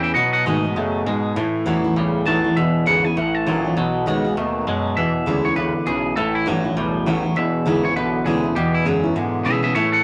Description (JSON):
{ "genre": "rockabilly", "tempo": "200 BPM", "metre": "4/4", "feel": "swing 61% on 8ths", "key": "E mixolydian", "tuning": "A4 = 441 Hz", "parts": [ { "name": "twangy electric guitar", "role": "melody", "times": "0.0-10.0 s", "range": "E4 to A5", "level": "-24 LUFS", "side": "equal", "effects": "none" }, { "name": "picked steel-string acoustic guitar", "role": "accompaniment", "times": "0.0-10.0 s", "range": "E2 to F#4", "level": "-25 LUFS", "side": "equal", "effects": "none" }, { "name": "twangy electric guitar", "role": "riff", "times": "0.0-10.0 s", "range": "E2 to A3", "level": "-25 LUFS", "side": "equal", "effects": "none" }, { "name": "gritty driven synth bass", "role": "bass", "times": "0.0-10.0 s", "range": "E1 to B2", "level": "-29 LUFS", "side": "equal", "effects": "none" } ], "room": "wet studio ambience, RT60 0.5 s", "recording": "none", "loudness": "-20 LUFS", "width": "mono", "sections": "0.0-5.0 A section; 5.0-10.0 A section", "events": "none", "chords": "0.2 B7; 1.4 A7; 2.6 E7; 3.2 A7; 3.8 B7; 5.0 E7; 6.2 A7; 7.4 E7" }